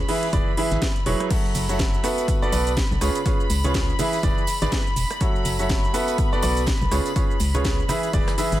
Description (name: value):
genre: piano house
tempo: 123 BPM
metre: 4/4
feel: swing 58% on 16ths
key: unclear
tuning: A4 = 440 Hz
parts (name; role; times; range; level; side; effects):
- warm studio violin section; sustained chords; 0.0-8.6 s; B5; -31 LUFS; left 2 dB; vintage 12-bit sampler grit, sidechain pumping
- organ-like FM bass; bass; 0.0-8.6 s; E1 to C#2; -24 LUFS; equal; sidechain pumping
- clear grand piano; riff; 0.1-8.6 s; C#3 to E5; -25 LUFS; right 2 dB; sidechain pumping, digital delay
- house drum kit; drums; 0.1-8.6 s; crash cymbal, hi-hat, rim click, shaker, snare drum; -30 LUFS; equal; none
- vintage brush drum kit; drums; 0.1-8.6 s; hi-hat, snare drum; -40 LUFS; right 3 dB; none
- electronic kick drum; drums; 0.3-8.2 s; none; -24 LUFS; equal; none
- tambourine and congas; percussion; 1.3-8.6 s; none; -34 LUFS; right 3 dB; none
room: studio reverb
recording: none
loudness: -20 LUFS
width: side -14 dB against mid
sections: 0.0-8.6 A section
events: none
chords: 0.1 E7; 1.3 F#m7; 2.0 Bm7; 3.0 C#7; 4.0 E7; 5.2 F#m7; 5.9 Bm7; 6.9 C#7; 7.9 E7